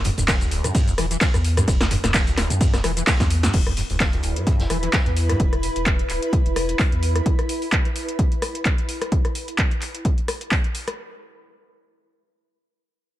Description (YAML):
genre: acid house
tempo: 129 BPM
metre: 4/4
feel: swing 55% on 16ths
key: E minor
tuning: A4 = 440 Hz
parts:
  - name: warm sub bass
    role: bass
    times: 0.0-7.2 s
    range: D1 to E2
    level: -24 LUFS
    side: equal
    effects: sidechain pumping
  - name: electro analog drum machine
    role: drums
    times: 0.0-11.0 s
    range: crash cymbal, handclaps, hi-hat, ride cymbal, rim click, shaker, snare drum, toms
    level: -24 LUFS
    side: equal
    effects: none
  - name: vintage drum kit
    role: drums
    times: 0.0-5.4 s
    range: hi-hat, snare drum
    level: -35 LUFS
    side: equal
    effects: none
  - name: acid bass, saw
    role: riff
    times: 0.1-5.4 s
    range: D2 to E3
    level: -26 LUFS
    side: equal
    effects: overdrive, ensemble chorus, cassette tape, sidechain pumping
  - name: electronic kick drum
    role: drums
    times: 0.3-10.6 s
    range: none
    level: -20 LUFS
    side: equal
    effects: none
  - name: granular cloud pad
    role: texture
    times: 4.2-9.1 s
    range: E4 to B5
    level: -29 LUFS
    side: equal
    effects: built-in reverb, sidechain pumping
room: little or no reverb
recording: none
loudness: -18 LUFS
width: side -14 dB against mid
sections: 0.0-3.5 A section; 3.5-11.0 B section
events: drop 0.0-3.5; drum fill 3.1-3.5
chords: 0.0 Dsus2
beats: 0.28 0.75 1.21 | 1.68 2.14 2.61 3.07 | 3.54 4.00 4.47 4.93 | 5.40 5.86 6.33 6.79 | 7.26 7.72 8.19 8.65 | 9.12 9.58 10.05 10.51